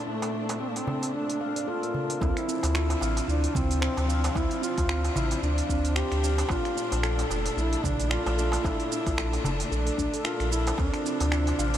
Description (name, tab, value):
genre	organic downtempo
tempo	112 BPM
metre	4/4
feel	swing 57% on 16ths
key	D minor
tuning	A4 = 440 Hz
part	warm studio string section	sustained chords	0.0-11.8 s	Bb2 to D4	-35 LUFS	left 1 dB	sidechain pumping
part	wind-like tuned noise texture	texture	0.0-2.2 s	none	barely audible	none	none
part	mellow duduk	melody	0.1-11.8 s	A3 to G4	-30 LUFS	equal	diffuse ambient delay
part	handpan	arpeggios	0.1-11.7 s	C4 to F5	-34 LUFS	equal	tape echo
part	organic electronic drum kit	drums	0.2-11.8 s	finger snaps, hi-hat, shaker	-34 LUFS	right 2 dB	none
part	darbuka	percussion	0.2-11.8 s	none	-37 LUFS	right 2 dB	none
part	warm sub bass	bass	2.2-11.8 s	F1 to D2	-28 LUFS	equal	tube saturation, sidechain pumping
part	electronic kick drum	drums	2.2-10.9 s	none	-31 LUFS	equal	none
room	moderate huge ambient reverb, RT60 6.9 s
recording	dreamy mix soaked in reverb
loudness	-25 LUFS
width	side -11 dB against mid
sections	0.0-2.2 A section; 2.2-11.8 B section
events	none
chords	0.0 Bbmaj7; 2.2 Dm7; 6.5 Bbmaj7; 10.8 Dm7